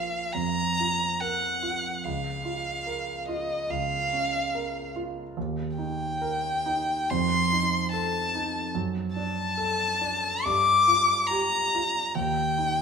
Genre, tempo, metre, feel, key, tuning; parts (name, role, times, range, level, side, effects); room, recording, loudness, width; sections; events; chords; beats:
classical, romantic duo for violin and grand piano; 71 BPM; 4/4; rubato; Bb minor; A4 = 440 Hz
warm violin; melody; 0.0-12.8 s; Eb5 to D6; -25 LUFS; left 2 dB
clear grand piano; accompaniment; 0.0-12.8 s; Bb1 to Bb4; -30 LUFS; right 3 dB
wet stone room reverb, RT60 1.2 s; minimal, uncompressed stereo recording; -24 LUFS; side -6 dB against mid
0.0-12.8 A section
0.0 Bb5; 2.0 Bbm/Db; 5.4 Eb; 7.1 F7; 8.7 D/F#; 10.5 Gm7; 12.2 Eb
0.35 1.21 | 2.04 2.87 3.71 4.54 | 5.36 6.20 7.09 7.92 | 8.74 9.58 10.46 11.31 | 12.16